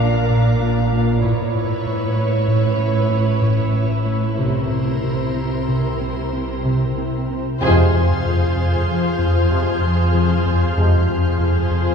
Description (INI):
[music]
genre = cinematic, suspense film score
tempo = 95 BPM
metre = 5/4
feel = straight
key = F minor from 7.6 s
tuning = A4 = 440 Hz
[part]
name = muted studio violin section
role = melody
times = 0.0-11.9 s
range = C5 to F5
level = -28 LUFS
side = left 1 dB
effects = none
[part]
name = muted studio violin section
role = second line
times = 0.0-11.9 s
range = Ab4 to B4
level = -29 LUFS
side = left 2 dB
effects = none
[part]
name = muted studio viola section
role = accompaniment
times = 0.0-11.9 s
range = D4 to F4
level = -27 LUFS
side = left 3 dB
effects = none
[part]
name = soft additive organ-like pad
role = sustained chords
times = 0.0-11.9 s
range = E4 to D5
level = -27 LUFS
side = right 2 dB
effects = ensemble chorus, built-in reverb
[part]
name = round analog bass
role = riff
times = 0.0-11.9 s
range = F2 to C4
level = -22 LUFS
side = left 1 dB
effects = none
[part]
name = muted studio cello section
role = bass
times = 0.0-11.9 s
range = F2 to C3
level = -23 LUFS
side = right 2 dB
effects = none
[part]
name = muted studio double bass section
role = bass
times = 0.0-11.9 s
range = F1 to C2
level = -25 LUFS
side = right 3 dB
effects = none
[part]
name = organ-like drone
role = drone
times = 0.2-11.9 s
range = A1 to F2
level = -26 LUFS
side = equal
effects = none
[part]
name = bright trombone section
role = sustained chords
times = 7.6-11.0 s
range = C3 to F3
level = -30 LUFS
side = right 3 dB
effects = none
[part]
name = warm French horn section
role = sustained chords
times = 7.6-11.0 s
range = Ab3 to F4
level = -30 LUFS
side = left 1 dB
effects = none
[part]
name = timpani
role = percussion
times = 7.6-8.5 s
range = F2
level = -27 LUFS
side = right 1 dB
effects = none
[part]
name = muted studio violin section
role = texture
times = 7.6-11.9 s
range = C6 to G6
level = -31 LUFS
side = right 1 dB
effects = none
[sound]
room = wet church reverb, RT60 3.2 s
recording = recorded in a church or concert hall, studio ambience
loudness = -16 LUFS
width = side -6 dB against mid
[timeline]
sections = 0.0-7.6 A section; 7.6-11.9 B section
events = band accent 7.6-8.3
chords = 0.0 Bb; 1.2 Aadd9; 4.4 C7; 7.6 Fm